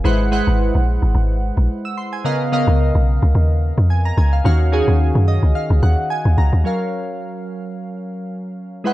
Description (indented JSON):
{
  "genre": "amapiano",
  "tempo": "109 BPM",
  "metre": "4/4",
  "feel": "swing 55% on 16ths",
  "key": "unclear",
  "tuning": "A4 = 440 Hz",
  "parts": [
    { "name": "glassy digital keys", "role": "accompaniment", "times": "0.0-8.9 s", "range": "Db3 to E6", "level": "-21 LUFS", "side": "equal", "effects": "chorus" },
    { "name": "deep log drum bass", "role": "bass", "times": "0.0-6.6 s", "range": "Ab1 to Gb2", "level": "-14 LUFS", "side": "equal", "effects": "none" }
  ],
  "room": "little or no reverb",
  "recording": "dry, gritty hardware recording, cassette tape",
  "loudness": "-15 LUFS",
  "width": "side -16 dB against mid",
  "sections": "0.0-6.7 A section; 6.7-8.9 B section",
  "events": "drop 0.0-6.7; synth keys fill 5.0-6.7",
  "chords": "0.0 Ab7alt; 2.2 Db13; 4.5 Ebm9; 6.7 Gbmaj7"
}